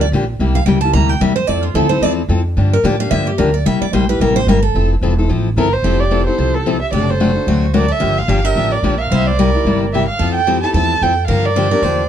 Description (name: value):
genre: acoustic string swing (jazz manouche)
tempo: 220 BPM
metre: 4/4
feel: swing 57% on 8ths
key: F major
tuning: A4 = 437 Hz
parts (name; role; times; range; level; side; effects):
- picked steel-string acoustic guitar; second line; 0.0-12.1 s; F4 to Bb5; -20 LUFS; right 3 dB; none
- picked steel-string acoustic guitar; accompaniment; 0.0-12.0 s; C3 to A4; -17 LUFS; left 4 dB; none
- upright bass; bass; 0.0-12.1 s; E1 to A2; -17 LUFS; equal; none
- dark violin; melody; 5.6-12.1 s; A4 to A5; -18 LUFS; right 4 dB; none
room: light reverb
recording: dark, warm production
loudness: -13 LUFS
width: side -9 dB against mid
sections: 0.0-5.8 A section; 5.8-12.1 B section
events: steel-string acoustic guitar solo 0.0-5.8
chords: 0.4 C9; 1.5 Fmaj7; 2.6 Gm7; 3.7 C6; 4.7 Fmaj7; 5.8 Fmaj9; 6.9 D7/F#; 8.0 Gm7; 9.1 C9; 10.2 Fmaj7; 11.3 Gm7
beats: 0.13 | 0.40 0.67 0.94 1.21 | 1.49 1.76 2.03 2.30 | 2.57 2.85 3.12 3.39 | 3.66 3.93 4.20 4.48 | 4.75 5.02 5.29 5.56 | 5.84 6.11 6.38 6.65 | 6.92 7.20 7.47 7.74 | 8.02 8.29 8.56 8.83 | 9.11 9.38 9.65 9.92 | 10.20 10.47 10.74 11.02 | 11.29 11.56 11.83